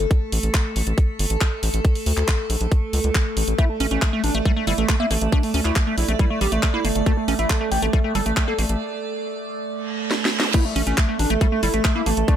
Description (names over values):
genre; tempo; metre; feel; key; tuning
psychedelic trance; 138 BPM; 4/4; straight; unclear; A4 = 440 Hz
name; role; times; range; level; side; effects
evolving wavetable pad; sustained chords; 0.0-12.4 s; A3 to D5; -28 LUFS; right 3 dB; phaser, built-in reverb, vintage 12-bit sampler grit, sidechain pumping
round analog bass; bass; 0.0-12.2 s; G1 to D2; -22 LUFS; equal; none
garage drum kit; drums; 0.0-12.4 s; crash cymbal, handclaps, hi-hat, snare drum; -26 LUFS; equal; none
electronic kick drum; drums; 0.1-12.4 s; none; -19 LUFS; equal; none
overdriven synth lead; melody; 3.6-12.3 s; A3 to A4; -26 LUFS; left 1 dB; distortion, phaser, sidechain pumping, dub echo
liquid acid bass; riff; 3.6-12.3 s; G3 to C#4; -27 LUFS; right 1 dB; phaser, auto-pan, cassette tape, sidechain pumping, dub echo
reverse cymbal and zap; sound effects; 9.9-10.5 s; none; -27 LUFS; right 4 dB; none
room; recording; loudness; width
little or no reverb; none; -19 LUFS; side -10 dB against mid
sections
0.0-10.5 A section; 10.5-12.4 B section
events
break 8.8-10.5; reverse cymbal 9.9-10.5; drum fill 10.1-10.5; drop 10.5-12.4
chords
0.0 Gsus2 (rootless); 10.5 A5